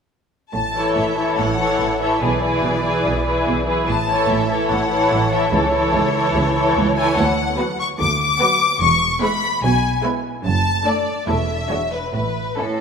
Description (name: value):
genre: classical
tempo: 145 BPM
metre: 4/4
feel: rubato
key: A major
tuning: A4 = 440 Hz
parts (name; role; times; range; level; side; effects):
- warm symphonic violin section; melody; 0.5-12.8 s; A4 to D6; -21 LUFS; left 4 dB; none
- rich symphonic double bass section; bass; 0.5-12.5 s; E1 to D2; -26 LUFS; right 4 dB; none
- warm symphonic cello section; bass; 0.5-12.8 s; C#2 to B2; -25 LUFS; right 3 dB; none
- warm symphonic viola section; accompaniment; 0.7-12.8 s; E3 to E4; -23 LUFS; right 1 dB; none
- rich symphonic violin section; second line; 0.8-12.8 s; E4 to D5; -22 LUFS; left 2 dB; none
room: wet scoring stage reverb, RT60 2.0 s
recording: minimal, uncompressed stereo recording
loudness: -16 LUFS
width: side -6 dB against mid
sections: 0.5-12.8 A section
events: none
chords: 0.5 A; 2.2 E7/B; 3.9 A; 5.5 A/C#; 7.2 Bm/D; 8.8 E; 10.5 D/F#; 11.3 A/E; 11.7 E13; 12.1 A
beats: | 0.54 0.96 1.38 1.79 | 2.21 2.63 3.04 3.46 | 3.88 4.29 4.70 5.12 | 5.53 5.94 6.36 6.77 | 7.17 7.58 7.99 8.40 | 8.81 9.22 9.63 10.04 | 10.45 10.87 11.28 11.71 | 12.14 12.59